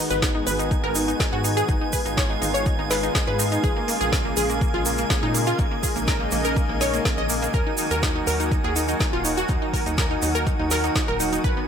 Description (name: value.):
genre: progressive house.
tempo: 123 BPM.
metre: 4/4.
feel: straight.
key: Eb minor.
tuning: A4 = 440 Hz.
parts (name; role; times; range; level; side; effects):
lush unison pad; sustained chords; 0.0-11.7 s; Db3 to Gb4; -28 LUFS; equal; chorus, sidechain pumping.
wide unison pluck; arpeggios; 0.0-11.7 s; Bb3 to Eb5; -25 LUFS; equal; sidechain pumping, digital delay.
drifting glass-harmonics texture; texture; 0.1-11.7 s; Ab5 to Ab6; -33 LUFS; right 1 dB; chorus, built-in reverb, sidechain pumping.
tight sequencer bass; bass; 0.1-11.5 s; Eb1 to Bb2; -29 LUFS; equal; sidechain pumping.
deep house drum kit; drums; 0.1-11.5 s; hi-hat, snare drum; -28 LUFS; left 1 dB; none.
egg shaker; percussion; 0.1-11.5 s; none; -31 LUFS; right 4 dB; none.
electronic kick drum; drums; 0.2-11.5 s; none; -24 LUFS; equal; none.
room: light reverb.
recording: none.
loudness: -20 LUFS.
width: side -8 dB against mid.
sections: 0.0-11.7 A section.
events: none.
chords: 0.0 Abm7; 3.6 Bbm7; 7.5 Ebm.